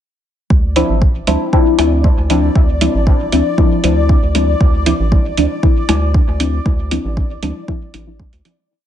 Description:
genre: dub techno.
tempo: 117 BPM.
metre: 4/4.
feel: straight.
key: D minor.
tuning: A4 = 440 Hz.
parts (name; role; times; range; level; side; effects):
round analog bass; bass; 0.5-8.4 s; A1 to D2; -17 LUFS; equal; sidechain pumping.
electronic kick drum; drums; 0.5-8.3 s; none; -13 LUFS; equal; none.
congas and cowbell; percussion; 0.5-8.3 s; none; -26 LUFS; right 5 dB; overdrive, sidechain pumping on perc, dub echo.
bubbling stepped-filter texture; texture; 0.5-8.7 s; D5; -25 LUFS; left 3 dB; chorus, built-in reverb, sidechain pumping.
deep mellow chord stab; stabs; 0.8-8.7 s; F3 to E4; -17 LUFS; left 2 dB; chorus, phaser, sidechain pumping, dub echo.
electronic hi-hat; drums; 0.8-8.6 s; none; -22 LUFS; right 5 dB; none.
room: light reverb, digital ambience.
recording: nothing above 10.3 kHz.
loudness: -12 LUFS.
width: side -10 dB against mid.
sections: 0.5-8.7 groove.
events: filter sweep on synth stab 0.5-8.7; fade-out 6.0-8.7.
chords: 0.5 Dm9.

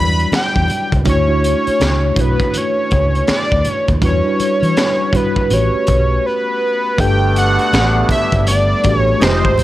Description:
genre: R&B, neo-soul.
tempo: 81 BPM.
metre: 4/4.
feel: swing 62% on 16ths.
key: unclear.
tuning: A4 = 438 Hz.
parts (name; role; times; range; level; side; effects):
fat analog lead; melody; 0.0-9.6 s; B4 to B5; -17 LUFS; equal; none.
mellow tine electric piano; accompaniment; 0.0-9.6 s; F#3 to D5; -20 LUFS; equal; medium stereo tremolo.
vintage muted fingered electric bass; bass; 0.0-9.6 s; Eb1 to E3; -16 LUFS; equal; none.
crunchy breakbeat drum kit; drums; 0.2-9.6 s; finger snaps, hi-hat, kick drum, snare drum; -18 LUFS; equal; none.
congas; percussion; 0.3-9.6 s; none; -29 LUFS; right 1 dB; none.
chorused pulse-width pad; sustained chords; 7.0-9.6 s; F3 to Eb4; -25 LUFS; right 1 dB; none.
muted trombone section; stabs; 7.0-9.6 s; B2 to Eb4; -23 LUFS; right 2 dB; none.
room: light reverb, studio reverb.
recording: none.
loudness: -12 LUFS.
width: side -15 dB against mid.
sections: 0.0-7.0 A section; 7.0-9.6 B section.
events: break 6.2-7.0.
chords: 0.0 Em9; 1.1 Dmaj9; 4.0 Em9; 5.5 A13; 7.0 Gmaj9.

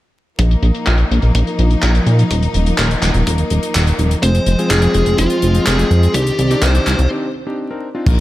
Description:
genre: italo disco.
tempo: 125 BPM.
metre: 4/4.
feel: straight.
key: C minor.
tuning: A4 = 440 Hz.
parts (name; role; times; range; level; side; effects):
bright studio string section; sustained chords; 0.4-8.2 s; Eb3 to D5; -22 LUFS; left 1 dB; none.
chorused synth bass; bass; 0.4-8.2 s; Eb1 to Bb2; -14 LUFS; equal; none.
kick drum; drums; 0.4-8.2 s; none; -20 LUFS; equal; high-pass filter on kick, high-pass filter on snare, high-pass filter on room.
tight funk drum kit; drums; 0.4-8.2 s; crash cymbal, handclaps, hi-hat; -21 LUFS; equal; low-pass filter on hats, low-pass filter on cymbals, low-pass filter on snare, low-pass filter on room, gated reverb.
fuzz lead guitar; melody; 4.2-7.1 s; F4 to C5; -19 LUFS; equal; distortion, ping-pong delay.
warm electric grand piano; stabs; 4.2-8.2 s; Ab3 to Bb4; -22 LUFS; left 2 dB; none.
room: little or no reverb.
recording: vinyl crackle.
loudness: -12 LUFS.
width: side -16 dB against mid.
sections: 0.4-8.1 A section.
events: filter sweep on analog synth bass 0.4-8.1; break 7.1-8.1.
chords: 0.4 Bbsus4; 2.3 Ebsus2; 4.2 Fm; 6.1 Cmadd9.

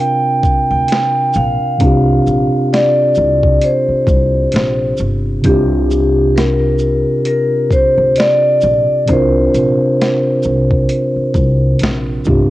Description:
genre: lo-fi hip hop.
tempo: 66 BPM.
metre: 4/4.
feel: swing 56% on 16ths.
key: unclear.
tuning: A4 = 444 Hz.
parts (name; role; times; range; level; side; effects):
vibraphone with medium mallets; melody; 0.0-11.8 s; G4 to G5; -15 LUFS; left 1 dB; none.
mellow tine electric piano; accompaniment; 0.0-12.5 s; C3 to Bb4; -16 LUFS; right 1 dB; slow stereo tremolo, cassette tape.
boom bap sampler-style drum kit; drums; 0.4-12.5 s; hi-hat, kick drum, shaker, snare drum; -17 LUFS; equal; vintage 12-bit sampler grit.
upright bass; bass; 0.7-12.5 s; G1 to D2; -17 LUFS; equal; none.
room: moderate spring reverb, RT60 2.1 s.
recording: home recording on cassette.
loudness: -11 LUFS.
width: side -16 dB against mid.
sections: 0.0-12.5 A section.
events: none.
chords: 0.0 C9sus4.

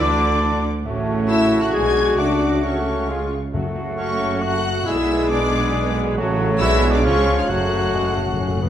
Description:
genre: classical, dramatic, fast romantic movement for symphony orchestra.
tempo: 135 BPM.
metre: 3/4.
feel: rubato.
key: F# minor.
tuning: A4 = 441 Hz.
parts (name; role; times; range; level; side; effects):
rich studio violin section; melody; 0.0-8.6 s; C#6 to G#6; -29 LUFS; left 4 dB; none.
mellow clarinet; second line; 0.0-8.6 s; D4 to A4; -28 LUFS; equal; none.
mellow concert flute; second line; 0.0-8.6 s; C#5 to D6; -29 LUFS; left 4 dB; none.
warm cor anglais; second line; 0.0-8.6 s; C#4 to G#4; -28 LUFS; right 1 dB; none.
warm symphonic violin section; second line; 0.0-8.6 s; C#5 to G#5; -30 LUFS; left 4 dB; none.
clear symphonic viola section; accompaniment; 0.0-8.7 s; E#3 to B4; -29 LUFS; right 1 dB; none.
warm bassoon; accompaniment; 0.0-8.7 s; D3 to C#4; -28 LUFS; right 1 dB; none.
bright trombone section; sustained chords; 0.0-8.6 s; B2 to A3; -29 LUFS; right 3 dB; none.
mellow French horn section; sustained chords; 0.0-8.6 s; C#4 to G#4; -24 LUFS; left 3 dB; none.
clear trumpet; stabs; 0.0-8.6 s; E#4 to D5; -29 LUFS; equal; none.
bright symphonic cello section; bass; 0.0-8.6 s; F#2 to D3; -27 LUFS; right 2 dB; none.
clear studio double bass section; bass; 0.0-8.6 s; F#1 to D2; -25 LUFS; right 2 dB; none.
timpani; percussion; 3.5-4.2, 7.5-8.7 s; F#2; -27 LUFS; left 3 dB; none.
room: wet recital hall reverb, RT60 1.6 s.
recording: dark, warm production.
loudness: -17 LUFS.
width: side -10 dB against mid.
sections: 0.0-8.7 A section.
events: timpani fill 7.5-8.7.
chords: 0.0 N.C.; 0.9 F#m/A; 1.7 G#m7b5/B; 2.2 F#m/C#; 3.1 C#; 3.5 F#m; 4.9 G#dim/B; 6.2 F#m/A; 6.6 G#m7b5/B; 7.0 C#; 7.5 F#m.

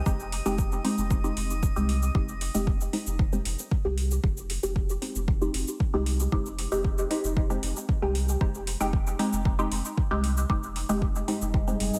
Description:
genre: dub techno.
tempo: 115 BPM.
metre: 4/4.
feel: straight.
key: F minor.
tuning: A4 = 441 Hz.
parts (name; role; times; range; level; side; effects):
drifting glass-harmonics texture; texture; 0.0-2.2 s; Eb5; -43 LUFS; equal; chorus, built-in reverb, sidechain pumping.
filtered dub chord stab; stabs; 0.1-11.9 s; Ab3 to G4; -32 LUFS; equal; phaser, sidechain pumping, dub echo.
warm sub bass; bass; 0.1-11.9 s; F1 to C2; -32 LUFS; equal; sidechain pumping.
electronic cabasa and hi-hat; drums; 0.1-12.0 s; none; -39 LUFS; equal; overdrive.
electronic kick drum; drums; 0.1-11.6 s; none; -29 LUFS; equal; overdrive.
deep dark ambient pad; sustained chords; 11.3-12.0 s; G3 to Ab5; -34 LUFS; equal; chorus, built-in reverb, sidechain pumping.
room: light reverb.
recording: none.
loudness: -27 LUFS.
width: mono.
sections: 0.0-2.1 A section; 2.1-12.0 A section.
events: none.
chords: 0.0 Fm9.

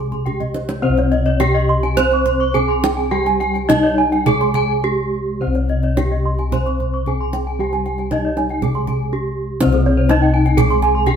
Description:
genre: Balinese gamelan.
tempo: 105-124 BPM.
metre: 4/4.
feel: straight.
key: C pelog.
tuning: A4 = 440 Hz.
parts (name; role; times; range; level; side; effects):
gamelan-type bronze metallophone; melody; 0.0-11.2 s; C4 to C5; -20 LUFS; right 2 dB; none.
gamelan-type bronze metallophone; accompaniment; 0.0-11.2 s; C3 to C4; -25 LUFS; right 1 dB; none.
gamelan-type bronze metallophone; arpeggios; 0.0-11.2 s; C5 to Db6+35c; -23 LUFS; left 5 dB; none.
gamelan-type bossed gongs; bass; 0.0-11.2 s; C2 to G4; -20 LUFS; left 2 dB; none.
kendang; percussion; 0.1-11.2 s; none; -23 LUFS; right 4 dB; none.
gamelan-type bronze metallophone; arpeggios; 0.6-10.9 s; Ab4 to Db6+35c; -23 LUFS; right 4 dB; none.
room: wet stone room reverb, RT60 1.0 s.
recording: band playing live in one room.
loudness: -15 LUFS.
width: side -8 dB against mid.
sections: 0.0-9.6 A section; 9.6-11.2 B section.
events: drum fill 0.1-0.8; break 4.6-5.4, 8.9-9.6.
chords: none.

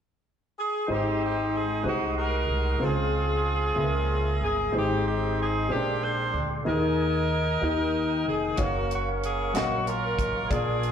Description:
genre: slow gospel.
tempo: 62 BPM (dotted quarters).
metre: 6/8.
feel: straight.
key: Ab major.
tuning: A4 = 445 Hz.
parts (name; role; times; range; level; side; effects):
clear saxophone section; melody; 0.6-10.9 s; Bb3 to C5; -28 LUFS; right 2 dB; plate reverb, slapback echo.
warm upright piano; accompaniment; 0.9-10.9 s; Ab2 to F5; -29 LUFS; left 3 dB; plate reverb, slapback echo.
tonewheel organ; sustained chords; 0.9-10.9 s; Ab3 to Eb6; -35 LUFS; right 1 dB; slow rotary speaker, overdrive, plate reverb.
upright bass; bass; 0.9-10.9 s; F1 to Eb2; -30 LUFS; equal; none.
tight funk drum kit; drums; 8.6-10.9 s; hi-hat, kick drum, snare drum; -30 LUFS; equal; none.
room: light reverb.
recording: live gig heard through the venue's PA, club reverb.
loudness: -24 LUFS.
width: side -8 dB against mid.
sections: 0.9-10.9 A section.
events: none.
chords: 0.0 N.C.; 0.9 Abmaj7; 1.8 Ab7/C; 2.8 Dbmaj7; 3.8 Dbm6; 4.7 Abmaj7; 5.7 Bb13; 6.7 Ebsus4; 7.6 Eb; 8.6 Gbmaj7.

